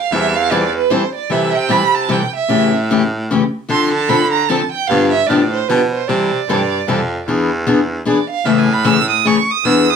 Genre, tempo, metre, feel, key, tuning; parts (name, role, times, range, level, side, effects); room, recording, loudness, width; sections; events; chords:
acoustic string swing (jazz manouche); 151 BPM; 3/4; swing 62% on 8ths; A minor; A4 = 441 Hz
warm violin; second line; 0.0-10.0 s; B4 to E6; -17 LUFS; right 8 dB
picked steel-string acoustic guitar; accompaniment; 0.1-9.9 s; C3 to A4; -16 LUFS; left 4 dB
bright baritone saxophone; bass; 0.1-10.0 s; E2 to D3; -19 LUFS; right 1 dB
wet studio reverb, RT60 0.5 s; band playing live in one room; -13 LUFS; side -6 dB against mid
0.0-1.3 A section; 1.3-10.0 A section
violin solo 0.0-10.0
0.0 Am7; 1.3 C6; 2.5 A7; 3.7 Dm7; 4.9 G7; 6.1 C6; 7.3 E7; 8.5 Amaj7